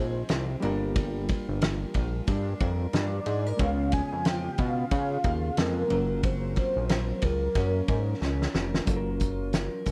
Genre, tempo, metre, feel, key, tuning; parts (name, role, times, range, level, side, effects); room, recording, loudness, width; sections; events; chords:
indie pop, bedroom pop; 91 BPM; 4/4; swing 60% on 16ths; A4 = 443 Hz
soft octave-layered synth lead; melody; 0.0-8.5 s; Bb4 to Ab5; -34 LUFS; equal; ensemble chorus, tape echo
picked steel-string acoustic guitar; accompaniment; 0.0-9.9 s; Db3 to Bb4; -38 LUFS; equal; lush chorus, vibrato effect
reed electric piano; accompaniment; 0.0-9.9 s; Gb3 to Db5; -39 LUFS; equal; cassette tape
chorused synth bass; bass; 0.0-9.9 s; F1 to Db3; -32 LUFS; equal
loose indie drum kit; drums; 0.3-9.9 s; hi-hat, kick drum, ride cymbal, snare drum; -31 LUFS; equal
little or no reverb; -28 LUFS; mono
0.0-8.9 A section; 8.9-9.9 B section
drum fill 8.2-8.9
0.0 Fm7; 0.6 Gm7; 3.6 Db7; 5.9 Gbmaj7